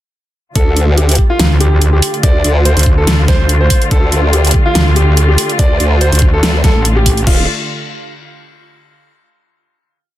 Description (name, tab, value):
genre	heavy wobble dubstep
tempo	143 BPM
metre	4/4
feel	swing 54% on 16ths, half-time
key	D minor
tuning	A4 = 440 Hz
part	warm concert grand piano	melody	0.6-7.4 s	F4 to D5	-18 LUFS	equal	digital delay
part	warm studio string section	sustained chords	0.6-7.5 s	D3 to F4	-20 LUFS	left 2 dB	sidechain pumping, low-pass filter
part	formant-sweep wobble bass	bass	0.6-7.5 s	D1 to D2	-12 LUFS	equal	chorus, overdrive
part	dubstep drum kit	drums	0.6-7.4 s	crash cymbal, hi-hat, snare drum	-17 LUFS	equal	overdrive
part	electronic kick drum	drums	0.6-7.4 s	none	-12 LUFS	equal	none
part	metallic wobble bass	bass	1.4-7.3 s	A1 to D2	-11 LUFS	equal	chorus, overdrive
room	digital ambience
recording	dense, heavily limited modern master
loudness	-9 LUFS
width	side -14 dB against mid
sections	0.6-7.3 drop; 7.3-8.9 final chord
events	drop 0.6-7.3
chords	0.6 Dm